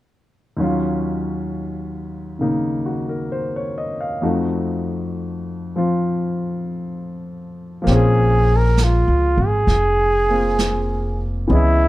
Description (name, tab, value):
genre	jazz ballad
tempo	66 BPM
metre	4/4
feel	swing 69% on 8ths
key	Bb minor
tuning	A4 = 440 Hz
part	warm baby grand piano	accompaniment	0.6-11.9 s	Eb2 to F5	-22 LUFS	left 1 dB	none
part	warm flugelhorn	melody	7.9-11.9 s	Fb4 to Bb4	-19 LUFS	right 1 dB	plate reverb
part	upright bass	bass	7.9-11.9 s	F1 to Db2	-17 LUFS	equal	none
part	jazz brush drum kit	drums	7.9-11.9 s	brushed snare drum, hi-hat, snare drum	-27 LUFS	right 3 dB	none
room	light reverb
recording	dark, warm production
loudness	-17 LUFS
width	side -16 dB against mid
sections	0.6-7.9 A section; 7.9-11.9 B section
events	none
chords	0.6 Ebm9; 4.2 F7b9; 7.9 Bbm7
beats	| 0.59 1.50 2.41 3.32 | 4.22 5.13 6.04 6.95 | 7.86 8.77 9.68 10.59 | 11.50